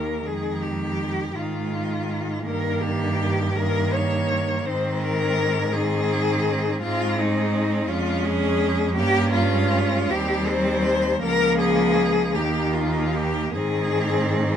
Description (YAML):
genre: classical, lyrical piece for cello ensemble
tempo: 48-57 BPM (dotted quarters)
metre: 6/8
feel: rubato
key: Ab major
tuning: A4 = 442 Hz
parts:
  - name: warm cello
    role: melody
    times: 0.0-14.6 s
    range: Eb4 to Db5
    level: -24 LUFS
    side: left 3 dB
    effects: none
  - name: rich cello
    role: second line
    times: 0.0-14.6 s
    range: Ab3 to Db4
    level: -28 LUFS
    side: right 6 dB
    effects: none
  - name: rich cello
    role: accompaniment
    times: 0.0-14.6 s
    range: Eb3 to Bb3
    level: -27 LUFS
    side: left 2 dB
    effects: none
  - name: warm cello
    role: bass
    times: 0.0-14.6 s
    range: Db2 to Ab2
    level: -26 LUFS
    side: right 2 dB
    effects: none
room: light reverb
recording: none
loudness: -20 LUFS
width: side -9 dB against mid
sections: 0.0-14.6 A section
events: none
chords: 0.3 Fm7; 2.5 Eb/G; 4.7 Ab; 7.9 Db/F; 9.0 Gdim; 10.1 Cm/Eb; 11.2 Bbm7/Db; 12.4 Eb5; 13.6 Ab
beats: | 0.27 1.37 | 2.47 3.57 | 4.66 5.74 | 6.82 7.88 | 8.97 10.10 | 11.23 12.36 | 13.56